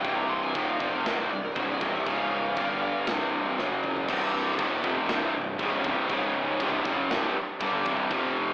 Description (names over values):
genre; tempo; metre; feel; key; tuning
heavy metal; 119 BPM; 4/4; straight; C minor; A4 = 437 Hz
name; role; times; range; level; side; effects
high-gain lead guitar; melody; 0.0-3.1 s; Bb4 to C6; -33 LUFS; equal; distortion
distorted electric guitar; riff; 0.0-8.5 s; C2 to G3; -28 LUFS; equal; distortion
high-gain distorted guitar; riff; 0.0-8.5 s; C2 to G3; -33 LUFS; right 1 dB; distortion
fuzz picked electric bass; bass; 0.0-8.5 s; C1 to G1; -34 LUFS; equal; overdrive
tight metal drum kit; drums; 0.0-8.2 s; china cymbal, crash cymbal, kick drum, snare drum, toms; -35 LUFS; equal; none
pipe organ, foundations; sustained chords; 4.1-8.5 s; none; barely audible; none; none
distorted electric guitar; riff; 4.1-8.5 s; C2 to G3; -33 LUFS; equal; none
room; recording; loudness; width
wet church reverb, RT60 3.0 s; rough rehearsal-room recording, AM radio sound; -25 LUFS; side -22 dB against mid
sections
0.0-4.1 A section; 4.1-8.5 B section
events
drum fill 3.6-4.1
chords
0.0 Cm; 2.1 Db5; 2.6 G5; 3.1 C5; 3.6 F#5; 4.1 Cm; 6.1 Db5; 6.6 Cm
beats
| 0.06 0.56 1.06 1.57 | 2.07 2.57 3.08 3.58 | 4.08 4.59 5.09 5.59 | 6.10 6.60 7.11 7.61 | 8.12